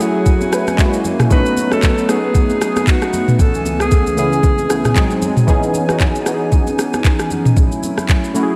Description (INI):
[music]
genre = amapiano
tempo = 115 BPM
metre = 4/4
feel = swing 58% on 16ths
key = C# minor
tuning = A4 = 442 Hz
[part]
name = breathy alto saxophone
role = melody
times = 0.0-5.2 s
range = F#4 to B4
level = -23 LUFS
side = equal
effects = tape echo
[part]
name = warm analog keys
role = accompaniment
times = 0.0-8.6 s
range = C#3 to B4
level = -22 LUFS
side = equal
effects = chorus, phaser
[part]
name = hollow soft pad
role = sustained chords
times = 0.0-8.6 s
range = C#2 to G#5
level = -24 LUFS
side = equal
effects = chorus
[part]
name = smooth R&B drum kit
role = drums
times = 0.0-8.5 s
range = handclaps, kick drum, rim click, shaker, toms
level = -17 LUFS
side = equal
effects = none
[part]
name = congas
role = percussion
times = 0.3-8.2 s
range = none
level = -30 LUFS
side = equal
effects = none
[sound]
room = moderate lush hall reverb, RT60 2.5 s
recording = dreamy mix soaked in reverb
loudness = -15 LUFS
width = mono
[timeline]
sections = 0.0-8.6 A section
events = none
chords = 0.0 F#m9; 0.8 F#9; 1.3 B7; 3.4 Amaj9/C#; 5.0 G#7; 5.5 C#m9; 7.6 F#m9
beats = 0.26 0.78 | 1.31 1.83 2.35 2.87 | 3.39 3.92 4.44 4.96 | 5.48 6.00 6.52 7.04 | 7.57 8.09